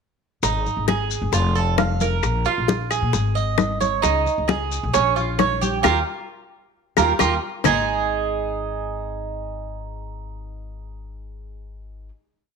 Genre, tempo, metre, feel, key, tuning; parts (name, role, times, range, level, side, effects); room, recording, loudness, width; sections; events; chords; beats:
latin, Cuban son and guajira; 133 BPM; 4/4; straight; A4 = 440 Hz
Cuban tres; arpeggios; 0.4-12.1 s; Ab3 to F5; -22 LUFS; right 8 dB
upright bass; bass; 0.4-12.1 s; F1 to Bb2; -25 LUFS; left 2 dB
bongos; percussion; 0.4-7.7 s; -25 LUFS; left 15 dB
congas; percussion; 0.4-7.8 s; -27 LUFS; left 4 dB
maracas; percussion; 0.4-7.8 s; -32 LUFS; left 17 dB
claves; percussion; 0.9-7.8 s; -28 LUFS; left 14 dB
moderate echo chamber reverb, RT60 1.3 s; 1960s-style stereo with parts hard left and right; -19 LUFS; side -5 dB against mid
0.4-7.6 verse; 7.6-11.2 final chord
band accent 5.8-7.6; drum fill 7.4
0.4 Ab5; 1.3 F; 2.2 Bb5; 3.1 Ab5; 4.0 Dbsus2; 4.9 Bbm; 5.8 Ebadd9; 7.6 Ab5
| 0.43 0.88 1.33 1.78 | 2.23 2.68 3.13 3.58 | 4.04 4.49 4.94 5.39 | 5.84 6.29 6.75 7.20 | 7.65 8.10 8.55 9.00 | 9.45 9.90 10.35 10.80